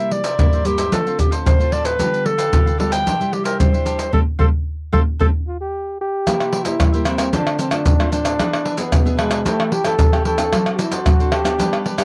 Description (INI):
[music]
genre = samba and choro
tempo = 113 BPM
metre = 4/4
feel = straight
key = unclear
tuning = A4 = 443 Hz
[part]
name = warm clarinet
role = melody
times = 0.0-5.3 s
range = G4 to G5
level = -23 LUFS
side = equal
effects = none
[part]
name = cavaquinho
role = accompaniment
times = 0.0-12.0 s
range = D4 to G5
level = -31 LUFS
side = equal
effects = none
[part]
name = nylon-string guitar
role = accompaniment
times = 0.0-12.0 s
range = G2 to A4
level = -27 LUFS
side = equal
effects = none
[part]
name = maracas, pandeiro, surdo and tamborim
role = percussion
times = 0.0-12.0 s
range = none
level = -20 LUFS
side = equal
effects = none
[part]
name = mellow trombone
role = second line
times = 5.5-12.0 s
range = G#3 to A4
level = -24 LUFS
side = equal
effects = none
[sound]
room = light reverb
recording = cassette tape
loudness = -18 LUFS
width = mono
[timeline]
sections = 0.0-6.3 A section; 6.3-12.0 B section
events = band accent 4.1-6.3; trombone solo 6.3-12.0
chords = 0.0 C7; 0.9 Dm7; 2.0 G7/D; 3.1 Cadd9; 4.1 Fadd9; 6.3 C7; 7.3 Dm7; 8.4 E7; 9.5 A7/E; 10.5 D7/F#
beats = 0.40 0.93 1.47 | 2.00 2.53 3.07 3.60 | 4.14 4.67 5.20 5.73 | 6.27 6.80 7.33 7.86 | 8.40 8.93 9.46 9.99 | 10.53 11.06 11.59